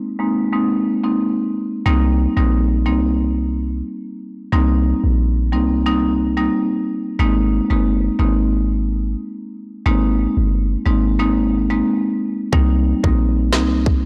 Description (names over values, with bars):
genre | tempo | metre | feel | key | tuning
dancehall | 90 BPM | 4/4 | straight | C minor | A4 = 440 Hz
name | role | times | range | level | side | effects
marimba with medium mallets | accompaniment | 0.2-13.7 s | G3 to Eb4 | -21 LUFS | equal | none
clean 808-style bass | bass | 1.9-14.1 s | G1 to C2 | -20 LUFS | equal | none
island pop drum kit | drums | 12.5-14.0 s | kick drum, snare drum | -20 LUFS | equal | none
room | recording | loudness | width
little or no reverb | blown-out, overdriven recording, overdrive, low-pass filter | -18 LUFS | mono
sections
0.0-1.9 A section; 1.9-14.1 B section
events
filter sweep 0.0-1.9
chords
0.0 Abadd9; 1.9 Cm7; 7.2 Abadd9; 12.5 Cm7